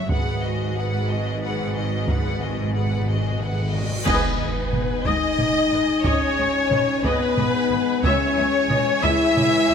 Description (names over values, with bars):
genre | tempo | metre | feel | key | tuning
cinematic, epic orchestral film score | 60 BPM (dotted quarters) | 6/8 | straight | G# minor from 4.1 s | A4 = 440 Hz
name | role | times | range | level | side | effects
warm symphonic violin section | melody | 0.0-9.7 s | B4 to F#5 | -28 LUFS | left 4 dB | none
rich studio violin section | second line | 0.0-9.7 s | G#4 to E5 | -29 LUFS | left 3 dB | none
dark studio viola section | accompaniment | 0.0-9.7 s | F#4 to G#5 | -29 LUFS | left 1 dB | none
rich chamber cello section | bass | 0.0-9.7 s | C#2 to G#2 | -30 LUFS | right 2 dB | none
rich symphonic double bass section | bass | 0.0-9.7 s | G#1 to C#2 | -30 LUFS | right 3 dB | none
dark French horn section | sustained chords | 0.1-9.7 s | F#3 to B4 | -25 LUFS | left 3 dB | none
solo taiko drums | drums | 0.1-9.7 s | none | -27 LUFS | right 1 dB | none
timpani | percussion | 0.1-5.0 s | G#2 | -30 LUFS | equal | none
reverse cymbal and impact | sound effects | 3.5-6.1 s | none | -35 LUFS | equal | none
concert flute | second line | 4.1-9.7 s | B4 to E5 | -26 LUFS | left 1 dB | none
warm symphonic string section | sustained chords | 4.1-9.7 s | E3 to D#5 | -32 LUFS | left 1 dB | none
clash cymbals and concert bass drum | percussion | 4.1-5.4 s | none | -30 LUFS | right 1 dB | none
room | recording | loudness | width
moderate scoring stage reverb, RT60 2.0 s | none | -19 LUFS | side -7 dB against mid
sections
0.0-4.1 A section; 4.1-9.7 B section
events
timpani fill 0.1-4.1; reverse cymbal 3.5-4.1; band accent 4.1-4.7; impact 4.1-6.1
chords
0.1 G#m7; 4.1 G#m; 8.0 C#m